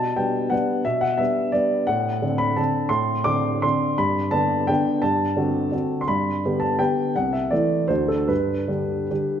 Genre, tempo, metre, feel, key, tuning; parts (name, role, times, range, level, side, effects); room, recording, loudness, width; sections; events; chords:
classical, piano waltz; 148-183 BPM; 3/4; rubato; G major; A4 = 440 Hz
warm upright piano; solo; 0.0-9.4 s; C2 to D6; -20 LUFS; equal
wet scoring stage reverb, RT60 1.7 s; minimal, uncompressed stereo recording; -20 LUFS; side -8 dB against mid
0.0-9.4 A section
0.0 G/B; 1.9 D7/A; 4.0 G; 5.0 D7/G; 6.1 G; 7.2 Am/C; 7.9 D7; 8.3 G